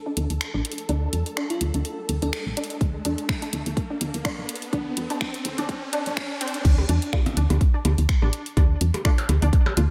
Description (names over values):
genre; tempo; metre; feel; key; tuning
minimal techno; 125 BPM; 4/4; swing 55% on 16ths; D minor; A4 = 440 Hz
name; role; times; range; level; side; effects
riser; sound effects; 1.2-6.6 s; none; -38 LUFS; equal; none
flickering grainy texture; texture; 0.0-6.7 s; A4; -43 LUFS; equal; built-in reverb, subtle chorus, sidechain pumping
resonant blip pluck; riff; 0.1-9.5 s; C4 to D4; -34 LUFS; equal; ensemble chorus, sidechain pumping, delay
woody FM bass; bass; 0.2-9.9 s; A1 to E2; -25 LUFS; equal; sidechain pumping
house drum kit; drums; 0.2-9.9 s; crash cymbal, finger snaps, hi-hat; -33 LUFS; equal; none
bell-like FM electric piano; melody; 1.5-2.4 s; F4 to A4; -36 LUFS; equal; chorus, tremolo, tape echo
electronic kick drum; drums; 2.8-9.6 s; none; -23 LUFS; equal; none
percussion blips; percussion; 6.8-9.7 s; none; -33 LUFS; equal; tape echo
filtered dub chord stab; stabs; 7.1-9.8 s; A3 to F4; -34 LUFS; equal; phaser, lush chorus, tape echo
room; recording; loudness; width
light reverb; high-pass filter; -24 LUFS; mono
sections
0.0-6.6 A section; 6.6-9.9 B section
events
build-up 0.0-6.6; filter sweep on synth arpeggio sound 0.0-6.6; riser 1.2-6.6; drop 6.6-9.9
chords
0.0 D5; 6.6 N.C.